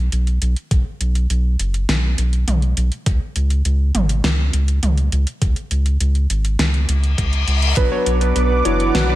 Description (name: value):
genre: synthwave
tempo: 102 BPM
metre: 4/4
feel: straight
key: B dorian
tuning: A4 = 440 Hz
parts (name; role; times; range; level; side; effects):
- round analog bass; bass; 0.0-9.2 s; F#1 to C#2; -17 LUFS; equal; none
- pop drum kit; drums; 0.1-9.1 s; hi-hat, snare drum, toms; -22 LUFS; equal; gated reverb
- electronic kick drum; drums; 0.7-7.9 s; none; -19 LUFS; equal; none
- reverse cymbal; sound effects; 6.9-7.8 s; none; -24 LUFS; left 5 dB; none
- warm velvety synth lead; melody; 7.8-9.2 s; E4 to B4; -20 LUFS; left 1 dB; chorus, tremolo, digital delay
- lush unison pad; sustained chords; 7.8-9.2 s; B4 to D6; -23 LUFS; right 1 dB; chorus, phaser, sidechain pumping
- warm electric grand piano; stabs; 7.8-9.2 s; F#3 to C#5; -22 LUFS; right 4 dB; none
room: little or no reverb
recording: none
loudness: -16 LUFS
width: side -15 dB against mid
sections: 0.0-9.2 A section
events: reverse cymbal 6.9-7.8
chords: 0.0 B5; 3.1 C#5; 7.8 Bm